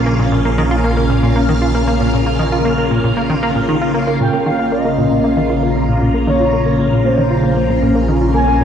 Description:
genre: ambient, sequencer-driven space music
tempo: 116 BPM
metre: 4/4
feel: straight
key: Bb minor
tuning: A4 = 440 Hz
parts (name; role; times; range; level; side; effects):
- phased string machine; sustained chords; 0.0-8.6 s; Db3 to F5; -16 LUFS; equal; ensemble chorus, phaser
- fat analog bass; bass; 0.0-8.6 s; Bb1; -19 LUFS; equal; none
- bubbling stepped-filter texture; texture; 0.0-8.6 s; Db4; -25 LUFS; right 2 dB; chorus, built-in reverb
- plucky analog bass; riff; 0.1-8.6 s; Bb2 to F4; -18 LUFS; equal; wide subtle chorus, tape echo
- expressive synth lead; melody; 4.2-8.6 s; C5 to Ab5; -19 LUFS; equal; wide subtle chorus, tape echo
room: wet concert hall reverb, RT60 2.0 s, digital ambience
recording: dark, warm production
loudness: -12 LUFS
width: side -8 dB against mid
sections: 0.0-8.6 A section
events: none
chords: 0.0 Bbmadd9

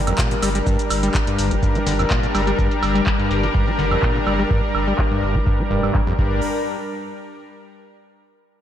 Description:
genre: acid house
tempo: 125 BPM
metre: 4/4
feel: straight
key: G minor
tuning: A4 = 445 Hz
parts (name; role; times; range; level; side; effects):
- lush unison pad; sustained chords; 0.0-6.4 s; G3 to Bb4; -22 LUFS; left 1 dB; chorus, sidechain pumping
- round analog bass; bass; 0.0-6.4 s; F1 to G1; -24 LUFS; equal; sidechain pumping
- overdriven acid bass; riff; 0.1-6.4 s; F2 to G3; -24 LUFS; equal; distortion, tube saturation, ping-pong delay
- booming analog drum machine; drums; 0.1-6.3 s; crash cymbal, handclaps, hi-hat, shaker, woodblock; -27 LUFS; right 2 dB; low-pass filter on perc, low-pass filter on hats, low-pass filter on cymbals, low-pass filter on snare
- electronic kick drum; drums; 0.2-6.3 s; none; -21 LUFS; equal; none
room: moderate lush hall reverb, RT60 1.6 s, digital ambience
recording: dreamy mix soaked in reverb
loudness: -17 LUFS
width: side -10 dB against mid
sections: 0.0-6.4 A section; 6.4-8.3 B section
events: filter sweep on drum 0.0-6.4; filter sweep on acid bass 0.0-6.4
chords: 0.0 Gm; 6.4 N.C.

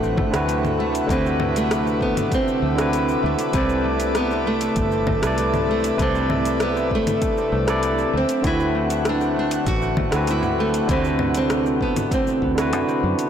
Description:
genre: sunset chillout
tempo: 98 BPM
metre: 4/4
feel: straight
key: unclear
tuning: A4 = 442 Hz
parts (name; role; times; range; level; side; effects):
- nylon-string guitar; melody; 0.0-13.0 s; A3 to F#4; -24 LUFS; right 1 dB; digital delay
- barky tine electric piano; accompaniment; 0.0-13.3 s; C3 to D5; -24 LUFS; left 1 dB; auto-pan, digital delay
- airy breathy pad; sustained chords; 0.0-13.3 s; B4 to D6; -29 LUFS; right 1 dB; chorus
- concert harp; arpeggios; 0.0-13.3 s; A3 to F#4; -29 LUFS; equal; digital delay
- fingered electric bass; bass; 0.0-13.1 s; G1 to F#2; -26 LUFS; equal; transformer saturation
- deep house drum kit; drums; 0.0-13.3 s; cabasa, congas, hi-hat, rim click; -28 LUFS; left 2 dB; overdrive
- electronic kick drum; drums; 0.2-12.5 s; none; -26 LUFS; equal; overdrive
room: moderate lush hall reverb, RT60 2.2 s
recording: blown-out, overdriven recording, overdrive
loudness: -18 LUFS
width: side -9 dB against mid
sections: 0.0-13.3 A section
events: none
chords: 0.0 D13; 3.5 Cmaj13; 8.1 D13

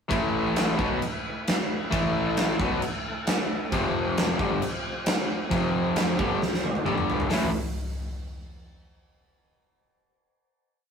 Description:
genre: hard rock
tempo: 134 BPM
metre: 4/4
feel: straight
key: A minor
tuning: A4 = 442 Hz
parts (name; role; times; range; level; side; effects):
- overdriven tonewheel organ; sustained chords; 0.1-7.5 s; F3 to B4; -37 LUFS; equal; none
- cranked stack guitar; riff; 0.1-7.5 s; F2 to B3; -28 LUFS; left 4 dB; overdrive
- overdriven semi-hollow guitar; riff; 0.1-7.5 s; F2 to B3; -29 LUFS; right 3 dB; none
- fuzz fingered electric bass; bass; 0.1-7.5 s; F1 to B1; -34 LUFS; right 1 dB; overdrive
- huge arena drum kit; drums; 0.1-7.4 s; crash cymbal, hi-hat, kick drum, snare drum, toms; -27 LUFS; equal; none
room: moderate studio reverb, RT60 0.5 s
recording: rough rehearsal-room recording, warm saturation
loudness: -24 LUFS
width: side -6 dB against mid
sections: 0.1-7.3 riff; 7.3-9.1 final chord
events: drum fill 6.4-7.3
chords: 0.1 A5; 3.7 F5; 6.8 G5; 7.3 A5

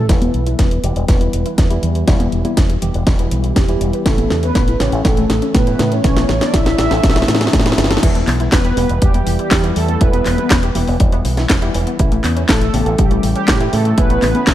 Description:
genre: italo disco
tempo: 121 BPM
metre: 4/4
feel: straight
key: E dorian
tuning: A4 = 439 Hz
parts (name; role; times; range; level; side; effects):
- mellow synth brass; melody; 0.0-14.5 s; G3 to E5; -20 LUFS; right 1 dB; chorus, digital delay
- tine electric piano; stabs; 0.0-14.5 s; E3 to G4; -24 LUFS; left 2 dB; overdrive, medium stereo tremolo, low-pass filter
- warbly dusty pluck; arpeggios; 0.1-14.5 s; C#3 to B4; -25 LUFS; right 1 dB; wide subtle chorus, vintage 12-bit sampler grit, digital delay
- fingered electric bass with an envelope filter; bass; 0.1-14.5 s; E1 to A2; -18 LUFS; equal; none
- electronic kick drum; drums; 0.1-14.5 s; none; -15 LUFS; equal; none
- house drum kit; drums; 0.1-14.5 s; congas, crash cymbal, handclaps, hi-hat, snare drum; -19 LUFS; equal; none
room: light reverb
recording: dark, warm production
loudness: -12 LUFS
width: side -12 dB against mid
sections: 0.1-8.0 A section; 8.0-14.5 B section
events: drum fill 0.1-8.0; filter sweep on tine electric piano 0.1-8.0; filter sweep on analog polysynth 0.1-8.0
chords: 0.1 Em; 4.1 A; 8.0 Em; 12.0 A

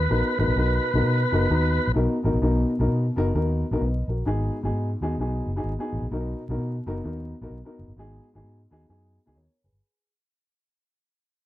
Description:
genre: uptempo 1960s-style soul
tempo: 130 BPM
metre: 4/4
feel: swing 62% on 8ths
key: B major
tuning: A4 = 440 Hz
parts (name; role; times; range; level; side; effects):
- tonewheel organ; melody; 0.0-1.9 s; B4; -26 LUFS; equal; overdrive, fast rotary speaker
- vintage muted fingered electric bass; bass; 0.0-9.8 s; F#1 to B2; -25 LUFS; equal; none
- dark upright piano; accompaniment; 0.1-10.1 s; G#2 to A#5; -27 LUFS; left 1 dB; tube saturation
room: light reverb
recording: dark, warm production, vinyl crackle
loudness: -22 LUFS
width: side -14 dB against mid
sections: 0.0-2.4 A section; 2.4-9.8 B section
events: fade-out 2.4-9.8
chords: 0.0 Bmaj7; 4.3 G#m7; 6.1 Bmaj7; 8.0 G#m7

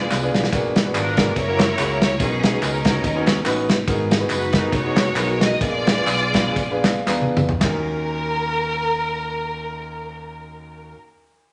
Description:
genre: uptempo gospel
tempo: 107-143 BPM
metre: 4/4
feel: swing 56% on 8ths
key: Eb minor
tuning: A4 = 440 Hz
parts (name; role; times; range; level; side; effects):
- clear studio string section; melody; 0.0-10.9 s; C#4 to Eb5; -26 LUFS; equal; none
- clear baby grand piano; accompaniment; 0.0-11.0 s; Eb2 to Bb5; -27 LUFS; equal; none
- fingered electric bass; bass; 0.0-10.9 s; F1 to Fb2; -31 LUFS; equal; none
- natural country drum kit; drums; 0.1-7.8 s; kick drum, ride cymbal, snare drum, toms; -23 LUFS; equal; none
- handclaps and tambourine; percussion; 0.1-7.9 s; none; -32 LUFS; equal; none
room: wet large studio reverb, RT60 0.8 s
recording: nothing above 10.7 kHz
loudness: -20 LUFS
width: mono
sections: 0.5-7.6 A section; 7.6-11.5 B section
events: drum fill 0.1-0.5, 7.1-7.6; slowing down 3.9-7.6; grand piano fill 6.6-7.6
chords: 0.0 Bb7b9 (rootless); 0.5 Bb7b9b13; 1.4 Gb7; 2.2 Bmaj9; 3.9 Abm9; 5.6 Bb7b9; 7.6 Ebm7

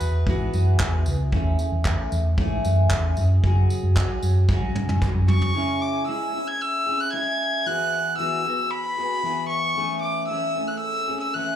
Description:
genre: acoustic pop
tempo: 114 BPM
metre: 4/4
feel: straight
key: A major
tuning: A4 = 440 Hz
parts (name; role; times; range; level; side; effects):
- warm violin; melody; 0.0-0.7, 5.3-11.6 s; B4 to G#6; -25 LUFS; left 1 dB; slapback echo
- fingerpicked steel-string acoustic guitar; accompaniment; 0.0-11.6 s; F#2 to G#4; -27 LUFS; equal; double-tracked left and right, slapback echo
- vintage muted fingered electric bass; bass; 0.0-5.5 s; C#2 to F#3; -21 LUFS; equal; none
- vintage brush drum kit; drums; 0.0-5.5 s; handclaps, kick drum, snare drum, tambourine, toms; -24 LUFS; equal; none
- group handclap; percussion; 0.8-5.1 s; none; -43 LUFS; left 1 dB; none
room: little or no reverb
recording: live gig heard through the venue's PA, club reverb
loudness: -20 LUFS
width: side -10 dB against mid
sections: 0.0-5.5 A section; 5.5-11.6 B section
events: drum fill 4.5-5.5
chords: 0.0 Eadd9; 1.3 Amaj7/E; 3.2 F#sus2; 5.5 C#m; 7.7 Eadd9; 9.8 Amaj7/E

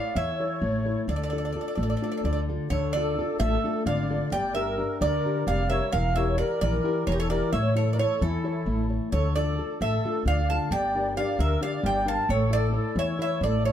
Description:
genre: greek folk, Greek bouzouki band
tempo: 262 BPM (eighths)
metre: 7/8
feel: straight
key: D harmonic minor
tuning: A4 = 441 Hz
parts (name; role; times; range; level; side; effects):
- Greek bouzouki; melody; 0.0-13.7 s; A4 to A5; -29 LUFS; right 3 dB; plate reverb
- musette accordion; second line; 0.0-13.7 s; E4 to F5; -32 LUFS; left 2 dB; none
- nylon-string guitar; accompaniment; 0.0-13.7 s; D3 to E5; -29 LUFS; left 2 dB; none
- upright bass; bass; 0.2-13.7 s; E1 to E2; -28 LUFS; equal; none
room: moderate small room reverb, RT60 0.5 s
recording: none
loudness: -24 LUFS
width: side -10 dB against mid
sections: 0.0-2.7 A section; 2.7-13.7 A section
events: speeding up 0.0-13.7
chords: 0.0 A; 1.1 Dm; 4.3 Gm; 5.9 Edim; 7.5 A; 9.1 Dm; 10.7 Gm; 12.3 A

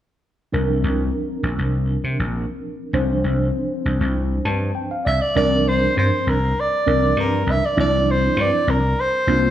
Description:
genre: jazz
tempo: 99 BPM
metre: 4/4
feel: straight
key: C mixolydian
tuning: A4 = 440 Hz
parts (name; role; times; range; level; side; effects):
- mellow tine electric piano; accompaniment; 0.5-9.5 s; F3 to A5; -23 LUFS; equal; medium stereo tremolo
- vintage slap bass; bass; 0.5-9.5 s; Bb1 to C3; -21 LUFS; equal; none
- mellow soprano saxophone; melody; 5.1-9.5 s; Bb4 to E5; -20 LUFS; right 1 dB; none
room: wet large studio reverb, RT60 1.2 s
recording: band playing live in one room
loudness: -18 LUFS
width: side -11 dB against mid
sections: 0.5-5.4 A section; 5.4-9.5 B section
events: tine electric piano fill 4.2-5.4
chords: 0.5 C9sus4; 5.1 Csus2; 5.4 C9sus4

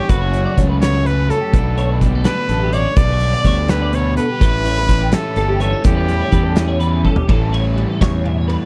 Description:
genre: math rock and midwest emo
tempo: 83 BPM (dotted quarters)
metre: 6/8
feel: straight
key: unclear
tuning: A4 = 440 Hz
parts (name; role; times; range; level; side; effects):
- brilliant trumpet; melody; 0.0-6.8 s; F#4 to D5; -25 LUFS; equal; none
- twelve-string electric guitar; accompaniment; 0.0-8.7 s; E2 to F#4; -27 LUFS; equal; none
- twelve-string electric guitar; arpeggios; 0.0-8.7 s; G4 to E5; -28 LUFS; equal; ensemble chorus
- crunchy overdriven guitar; riff; 0.1-8.7 s; A2 to E4; -27 LUFS; equal; none
- fuzz fingered electric bass; bass; 0.1-8.6 s; F#1 to E2; -21 LUFS; equal; overdrive
- loose indie drum kit; drums; 0.1-8.6 s; hi-hat, kick drum, ride cymbal, snare drum, toms; -19 LUFS; equal; none
room: little or no reverb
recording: none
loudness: -16 LUFS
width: mono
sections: 0.0-7.3 A section; 7.3-8.7 B section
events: drum fill 7.1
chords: 0.1 F#m; 1.5 Bm7; 3.0 G/B; 4.4 A7

